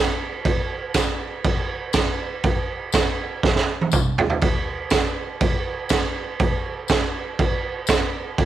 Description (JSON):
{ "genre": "rock", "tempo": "121 BPM", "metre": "4/4", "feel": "straight", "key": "none", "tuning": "none", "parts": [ { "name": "raw garage drum kit", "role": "drums", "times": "0.4-8.5 s", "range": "crash cymbal, kick drum, snare drum, toms", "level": "-20 LUFS", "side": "right 2 dB", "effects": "none" }, { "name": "tambourine", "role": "percussion", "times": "0.9-8.0 s", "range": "none", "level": "-33 LUFS", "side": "left 14 dB", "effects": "none" } ], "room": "light reverb", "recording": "1960s-style stereo", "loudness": "-20 LUFS", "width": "side -12 dB against mid", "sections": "0.0-8.5 A section", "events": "drum fill 3.4-4.4", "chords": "none", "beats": "| 0.45 0.94 1.44 1.94 | 2.44 2.93 3.43 3.92 | 4.42 4.92 5.41 5.90 | 6.40 6.89 7.39 7.88 | 8.37" }